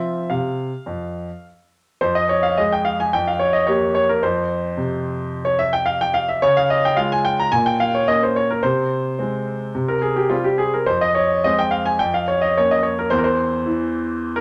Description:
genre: classical-period piano sonatina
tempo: 108 BPM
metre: 4/4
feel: rubato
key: F minor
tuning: A4 = 440 Hz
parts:
  - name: clear grand piano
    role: solo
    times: 0.0-14.4 s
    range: E2 to Bb5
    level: -20 LUFS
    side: equal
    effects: none
room: moderate studio reverb, RT60 0.8 s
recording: none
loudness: -20 LUFS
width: mono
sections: 0.0-2.0 A section; 2.0-14.4 B section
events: none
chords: 0.0 F5; 2.0 Fm; 3.1 Eb9/F; 4.2 F5; 6.4 Db; 7.5 Bbm; 8.6 Ab/C; 9.7 C5; 10.9 Fm; 12.0 Eb7sus2/F; 13.1 N.C.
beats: 0.29 0.87 1.44 | 2.01 2.57 3.13 3.67 | 4.23 4.78 5.32 5.85 | 6.40 6.95 7.50 8.06 | 8.62 9.18 9.75 10.31 | 10.88 11.45 12.00 12.56 | 13.11 13.66 14.21

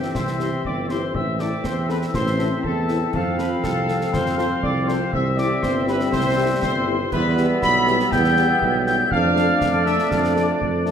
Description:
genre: military-style march for wind band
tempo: 120 BPM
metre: 2/4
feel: straight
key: C major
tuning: A4 = 440 Hz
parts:
  - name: dark trumpet section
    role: melody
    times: 0.0-10.5 s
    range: G4 to B5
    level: -25 LUFS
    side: right 1 dB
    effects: none
  - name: bright wooden piccolo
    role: second line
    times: 0.0-10.4 s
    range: G5 to B6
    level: -27 LUFS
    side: left 3 dB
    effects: none
  - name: clear woodwind section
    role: second line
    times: 0.0-10.9 s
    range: B3 to F5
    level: -26 LUFS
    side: left 2 dB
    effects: none
  - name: dark trombone section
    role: sustained chords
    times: 0.0-10.9 s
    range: E3 to D4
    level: -27 LUFS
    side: right 2 dB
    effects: none
  - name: mellow tuba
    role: bass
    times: 0.0-10.9 s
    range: G1 to F2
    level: -23 LUFS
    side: right 2 dB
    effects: none
  - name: concert snare drum, concert bass drum and clash cymbals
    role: drums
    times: 0.0-10.9 s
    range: none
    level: -30 LUFS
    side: left 1 dB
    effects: none
  - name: mellow French horn section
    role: accompaniment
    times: 0.4-10.9 s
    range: A3 to A4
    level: -30 LUFS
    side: left 5 dB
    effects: none
room: wet recital hall reverb, RT60 1.5 s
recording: minimal, uncompressed stereo recording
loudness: -18 LUFS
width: side -8 dB against mid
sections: 0.0-10.9 A section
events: none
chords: 0.0 C; 1.1 Am; 3.1 F; 5.1 C; 7.1 Em; 9.1 Dm/F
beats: | 0.15 0.65 | 1.14 1.64 | 2.14 2.64 | 3.13 3.63 | 4.13 4.63 | 5.13 5.63 | 6.12 6.62 | 7.12 7.62 | 8.12 8.62 | 9.11 9.61 | 10.11 10.61

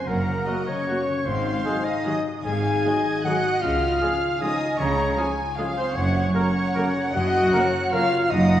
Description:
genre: classical, orchestral ballroom waltz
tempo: 153 BPM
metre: 3/4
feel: uneven beats, rubato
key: unclear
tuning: A4 = 440 Hz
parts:
  - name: rich chamber violin section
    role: melody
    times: 0.0-8.6 s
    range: Bb5 to Ab6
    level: -34 LUFS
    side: equal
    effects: none
  - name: bright oboe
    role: second line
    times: 0.0-8.6 s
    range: Bb4 to Ab5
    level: -32 LUFS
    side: equal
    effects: none
  - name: dark clarinet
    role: second line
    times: 0.0-8.6 s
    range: Bb4 to Ab5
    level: -31 LUFS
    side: left 1 dB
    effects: none
  - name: hollow concert flute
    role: second line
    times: 0.0-8.6 s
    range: Bb4 to Ab5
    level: -30 LUFS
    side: left 1 dB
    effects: none
  - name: rich chamber violin section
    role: second line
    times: 0.0-8.6 s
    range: Db5 to Bb5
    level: -31 LUFS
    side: equal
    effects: none
  - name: warm French horn section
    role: sustained chords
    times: 0.0-8.6 s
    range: Bb3 to Ab4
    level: -27 LUFS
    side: left 1 dB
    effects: none
  - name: concert harp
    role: arpeggios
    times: 0.0-8.6 s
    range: Gb2 to Gb4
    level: -31 LUFS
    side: left 5 dB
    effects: none
  - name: rich symphonic cello section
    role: bass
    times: 0.1-8.6 s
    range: Gb2 to Db3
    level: -28 LUFS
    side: right 2 dB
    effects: none
  - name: warm studio double bass section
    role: bass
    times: 0.1-8.6 s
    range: Gb1 to Db2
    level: -29 LUFS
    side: right 2 dB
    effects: none
  - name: rich chamber viola section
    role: accompaniment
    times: 0.5-8.0 s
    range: Ab3 to Bb4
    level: -34 LUFS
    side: equal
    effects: none
  - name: warm trombone section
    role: sustained chords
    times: 0.5-8.1 s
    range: F3 to Eb4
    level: -34 LUFS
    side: right 2 dB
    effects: none
  - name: mellow trumpet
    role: stabs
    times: 0.5-8.1 s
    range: Gb4 to Bb4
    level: -33 LUFS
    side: right 2 dB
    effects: none
room: wet scoring stage reverb, RT60 1.8 s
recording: worn, warbling old tape, cassette tape, warbly pitch drift, studio reverb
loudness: -20 LUFS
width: side -11 dB against mid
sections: 0.0-8.6 A section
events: none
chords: 0.0 Gb; 1.3 Ab7; 3.6 Db; 6.0 Gb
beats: | 0.09 0.48 0.88 | 1.27 1.65 2.05 | 2.45 2.84 3.25 | 3.63 4.02 4.42 | 4.80 5.18 5.59 | 5.97 6.35 6.75 | 7.14 7.53 7.93 | 8.30

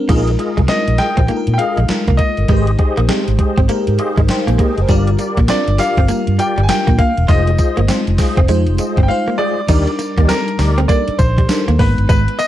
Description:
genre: R&B, new jack swing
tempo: 100 BPM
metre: 4/4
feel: swing 62% on 16ths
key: Eb major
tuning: A4 = 440 Hz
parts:
  - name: FM electric piano with soft pad layer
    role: accompaniment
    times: 0.0-12.5 s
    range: G3 to Bb5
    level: -21 LUFS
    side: left 1 dB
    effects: chorus, phaser
  - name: direct-recorded clean electric guitar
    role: riff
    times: 0.1-12.4 s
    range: G3 to F4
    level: -23 LUFS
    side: right 3 dB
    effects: lush chorus
  - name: tonewheel organ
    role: stabs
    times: 0.1-10.8 s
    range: Eb4 to Eb5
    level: -24 LUFS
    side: left 1 dB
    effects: chorus vibrato, slow rotary speaker
  - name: vintage muted fingered electric bass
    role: bass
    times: 0.1-12.3 s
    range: Fb1 to Bb2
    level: -15 LUFS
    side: equal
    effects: none
  - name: gated 80s digital drum machine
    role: drums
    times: 0.1-12.5 s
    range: crash cymbal, hi-hat, kick drum, snare drum, tambourine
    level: -16 LUFS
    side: equal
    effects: gated reverb, gated reverb snare, overdrive, vintage 12-bit sampler grit
  - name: clear baby grand piano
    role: melody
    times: 0.7-12.5 s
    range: Bb4 to Ab5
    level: -20 LUFS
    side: left 1 dB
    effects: none
room: digital ambience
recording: dark, warm production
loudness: -12 LUFS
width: side -13 dB against mid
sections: 0.1-9.7 A section; 9.7-12.5 B section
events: FM electric piano fill 3.7-4.9; break 9.1-9.7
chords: 0.1 Bb7sus4; 2.5 Abmaj7; 4.9 Gm7; 7.3 Fm7; 9.7 Ebmaj7; 11.8 Abm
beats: | 0.09 0.69 1.29 1.89 | 2.49 3.09 3.69 4.29 | 4.89 5.49 6.09 6.69 | 7.29 7.89 8.49 9.09 | 9.69 10.29 10.89 11.49 | 12.09

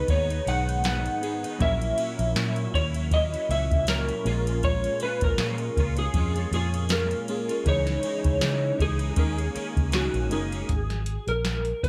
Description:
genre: indie pop, bedroom pop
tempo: 79 BPM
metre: 4/4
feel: swing 55% on 16ths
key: G# minor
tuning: A4 = 440 Hz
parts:
  - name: electric slide guitar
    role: melody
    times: 0.0-11.9 s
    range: F#4 to F#5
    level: -31 LUFS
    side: equal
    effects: analog chorus, plate reverb, tape echo
  - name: twelve-string electric guitar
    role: accompaniment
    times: 0.0-10.7 s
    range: G#2 to G#4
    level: -36 LUFS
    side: equal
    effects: ensemble chorus, warbly pitch drift, plate reverb
  - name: warbly lo-fi synth keys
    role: accompaniment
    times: 0.0-10.7 s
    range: E3 to A#4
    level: -37 LUFS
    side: equal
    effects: chorus, plate reverb
  - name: vintage muted fingered electric bass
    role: bass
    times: 0.1-11.9 s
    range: F#1 to C#3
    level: -30 LUFS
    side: equal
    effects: none
  - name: soft vintage rhythm box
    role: drums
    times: 0.1-11.9 s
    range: hi-hat, kick drum, ride cymbal, snare drum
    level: -31 LUFS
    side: equal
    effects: none
room: light reverb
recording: faint mains hum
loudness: -26 LUFS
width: mono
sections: 0.0-10.7 A section; 10.7-11.9 B section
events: none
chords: 0.0 G#m; 1.6 F#7/A#; 4.3 A#m7; 7.7 C#madd9; 9.2 D#7sus4; 10.7 G#sus2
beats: 0.09 0.85 | 1.61 2.36 3.12 3.88 | 4.63 5.39 6.15 6.90 | 7.66 8.42 9.18 9.94 | 10.70 11.45

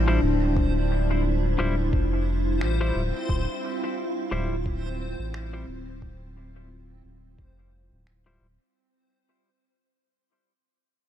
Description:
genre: ambient dub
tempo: 88 BPM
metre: 4/4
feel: swing 57% on 16ths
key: D minor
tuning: A4 = 440 Hz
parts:
  - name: soft additive organ-like pad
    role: sustained chords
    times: 0.0-8.7 s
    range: G3 to C5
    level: -29 LUFS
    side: equal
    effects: ensemble chorus, built-in reverb
  - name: round analog bass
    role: bass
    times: 0.0-8.6 s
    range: D1 to A1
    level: -26 LUFS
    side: equal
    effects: none
  - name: backwards swelling texture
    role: texture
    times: 0.0-8.8 s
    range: C4 to C5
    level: -37 LUFS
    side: right 1 dB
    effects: built-in reverb
  - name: semi-hollow electric guitar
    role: stabs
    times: 0.1-8.5 s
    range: G3 to C5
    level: -34 LUFS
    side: left 3 dB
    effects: low-pass filter, dub echo
  - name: electronic kick drum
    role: drums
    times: 0.6-7.5 s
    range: none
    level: -26 LUFS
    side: equal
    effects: none
  - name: electronic finger snaps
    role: drums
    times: 2.6-8.2 s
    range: none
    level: -43 LUFS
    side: equal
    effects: dub echo
room: little or no reverb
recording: none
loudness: -23 LUFS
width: side -10 dB against mid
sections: 0.0-8.7 A section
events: fade-out 0.0-8.7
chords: 0.0 Dm11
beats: | 0.57 1.25 1.93 2.61 | 3.29 3.98 4.66 5.34 | 6.02 6.70 7.38 8.07

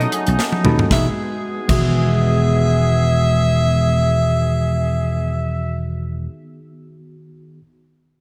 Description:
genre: polished 1980s jazz-funk pop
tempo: 115 BPM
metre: 4/4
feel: swing 54% on 16ths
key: E major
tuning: A4 = 440 Hz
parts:
  - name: breathy soprano saxophone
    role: melody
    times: 0.0-5.8 s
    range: D#5 to E5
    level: -25 LUFS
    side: equal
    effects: none
  - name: mellow tine electric piano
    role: accompaniment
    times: 0.0-7.6 s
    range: D#3 to B5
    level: -30 LUFS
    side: equal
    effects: subtle chorus
  - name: mellow woodwind section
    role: sustained chords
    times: 0.0-5.5 s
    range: B2 to G#4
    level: -29 LUFS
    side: equal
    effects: none
  - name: mellow electric guitar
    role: riff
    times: 0.0-6.3 s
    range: F#3 to B4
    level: -30 LUFS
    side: equal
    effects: none
  - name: vintage slap bass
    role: bass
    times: 0.0-6.3 s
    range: E1 to D#2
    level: -20 LUFS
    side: equal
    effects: none
  - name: crisp fusion drum kit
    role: drums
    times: 0.0-1.8 s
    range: crash cymbal, hi-hat, kick drum, snare drum, toms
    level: -23 LUFS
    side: equal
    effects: none
room: light reverb, small room ambience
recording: bright 1980s-style digital production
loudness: -18 LUFS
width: mono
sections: 0.9-5.1 A section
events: tine electric piano fill 0.0-0.9; drum fill 0.4-0.9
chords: 0.0 B9; 0.9 Emaj7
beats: 0.39 | 0.91 1.43 1.96 2.48 | 3.00 3.52 4.04 4.56

